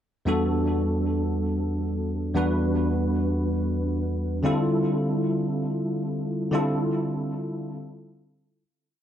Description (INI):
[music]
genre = amapiano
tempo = free time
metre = none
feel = none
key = unclear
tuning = A4 = 440 Hz
[part]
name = bell-like tine electric piano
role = solo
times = 0.3-8.6 s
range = E2 to B4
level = -23 LUFS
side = equal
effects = ensemble chorus, tape echo
[sound]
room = little or no reverb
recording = dry, gritty hardware recording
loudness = -23 LUFS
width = side -10 dB against mid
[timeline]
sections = 0.3-8.6 groove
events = fade-out 6.5-8.6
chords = 0.3 Em11; 4.4 Dm11